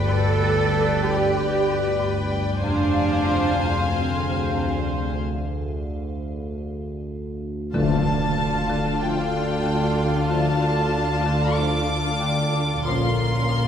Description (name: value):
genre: cinematic, suspense film score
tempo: 94 BPM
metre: 4/4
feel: straight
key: unclear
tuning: A4 = 440 Hz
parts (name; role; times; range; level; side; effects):
- warm studio violin section; melody; 0.0-13.7 s; G5 to D6; -30 LUFS; left 3 dB; none
- dark studio violin section; second line; 0.0-13.7 s; A4 to F5; -30 LUFS; left 2 dB; none
- rich studio viola section; accompaniment; 0.0-13.7 s; Db4 to C5; -30 LUFS; equal; none
- icy glass pad; sustained chords; 0.0-13.7 s; G4 to F5; -33 LUFS; equal; chorus, built-in reverb
- dark studio cello section; bass; 0.0-13.7 s; Bb2 to A4; -27 LUFS; right 3 dB; none
- rich studio double bass section; bass; 0.0-13.7 s; F1 to D2; -29 LUFS; right 3 dB; none
- analog drone; drone; 0.0-13.7 s; Bb1 to D2; -29 LUFS; right 1 dB; chorus
- worn celesta; texture; 0.0-13.7 s; F4 to A5; -37 LUFS; left 4 dB; none
- marimba with hard mallets; riff; 0.1-13.7 s; F2 to G3; -26 LUFS; left 3 dB; none
- clear trombone section; sustained chords; 7.7-13.1 s; F3 to Bb3; -35 LUFS; right 1 dB; none
- timpani; percussion; 7.7-8.7 s; D3; -28 LUFS; left 2 dB; none
- impact; sound effects; 7.7-10.3 s; none; -30 LUFS; equal; none
- mellow French horn section; sustained chords; 7.8-13.1 s; Db4 to F4; -32 LUFS; left 3 dB; none
room: wet scoring stage reverb, RT60 1.6 s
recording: heard from further back in the room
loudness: -20 LUFS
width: side -8 dB against mid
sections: 0.0-7.7 A section; 7.7-13.7 B section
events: break 5.2-7.7; impact 7.7-10.3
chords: 0.0 G; 2.6 Fm; 7.7 Dm; 12.8 Bbmadd9